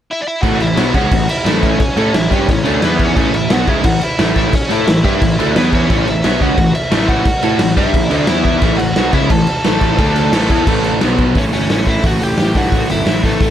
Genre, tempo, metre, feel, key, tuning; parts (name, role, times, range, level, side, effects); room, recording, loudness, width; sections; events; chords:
punk rock; 176 BPM; 4/4; straight; A major; A4 = 440 Hz
biting lead guitar; melody; 0.1-13.5 s; A3 to A5; -19 LUFS; equal; overdrive, tape echo
biting overdriven guitar; riff; 0.4-11.4 s; A2 to A4; -19 LUFS; left 1 dB
crunchy overdriven guitar; riff; 0.4-13.5 s; A2 to A4; -18 LUFS; right 1 dB
fuzz picked electric bass; bass; 0.4-13.5 s; G1 to A2; -19 LUFS; equal; overdrive
raw garage drum kit; drums; 0.4-13.5 s; crash cymbal, hi-hat, kick drum, snare drum; -16 LUFS; equal
little or no reverb; -11 LUFS; side -10 dB against mid
0.4-11.4 A section; 11.4-13.5 B section
0.4 A; 2.8 E5; 3.2 A; 5.6 E5; 5.9 A; 8.3 E5; 8.6 A; 10.0 D5; 10.3 A5; 11.0 B5; 11.4 A